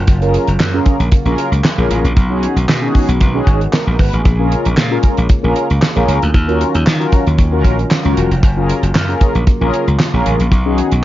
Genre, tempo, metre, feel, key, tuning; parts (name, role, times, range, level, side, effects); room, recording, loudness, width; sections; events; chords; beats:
early-eighties boogie funk; 115 BPM; 4/4; straight; A4 = 440 Hz
chorused pulse-width pad; sustained chords; 0.0-11.0 s; Db3 to F#4; -23 LUFS; equal
slap bass; bass; 0.0-11.0 s; Fb1 to Eb3; -15 LUFS; equal
damped 70s drum kit; drums; 0.1-11.0 s; handclaps, hi-hat, kick drum, snare drum; -14 LUFS; equal
mellow synth brass; accompaniment; 0.2-10.9 s; Db4 to B4; -18 LUFS; left 1 dB; chorus, phaser
light reverb, small room ambience; dark, warm production, nothing above 7.5 kHz; -11 LUFS; side -14 dB against mid
0.0-11.0 A section
0.1 Gbmaj7; 2.2 B6; 4.3 Bbm7; 6.3 Ebm9; 8.4 Gbmaj7; 10.5 B6
| 0.08 0.60 1.12 1.65 | 2.17 2.69 3.21 3.73 | 4.25 4.78 5.30 5.82 | 6.34 6.86 7.38 7.91 | 8.43 8.95 9.47 9.99 | 10.52 11.04